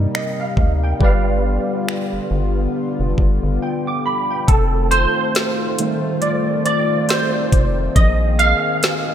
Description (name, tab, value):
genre	contemporary R&B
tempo	69 BPM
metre	4/4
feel	swing 58% on 16ths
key	unclear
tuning	A4 = 440 Hz
part	barky tine electric piano	accompaniment	0.0-9.1 s	C3 to D6	-20 LUFS	right 2 dB	ensemble chorus
part	chorused pulse-width pad	sustained chords	0.0-9.1 s	C3 to Ab4	-24 LUFS	left 3 dB	sidechain pumping
part	rubbery square bass	bass	0.0-8.5 s	F1 to D2	-19 LUFS	equal	none
part	smooth R&B drum kit	drums	0.1-9.1 s	finger snaps, hi-hat, kick drum, snare drum	-18 LUFS	equal	gated reverb
room	light reverb, digital ambience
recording	bright 1980s-style digital production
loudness	-15 LUFS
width	side -9 dB against mid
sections	0.0-4.5 A section; 4.5-9.1 B section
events	break 3.6-4.5; tine electric piano solo 4.5-9.1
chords	0.0 Cm7; 1.0 G7; 4.5 F7; 8.0 Bb9sus4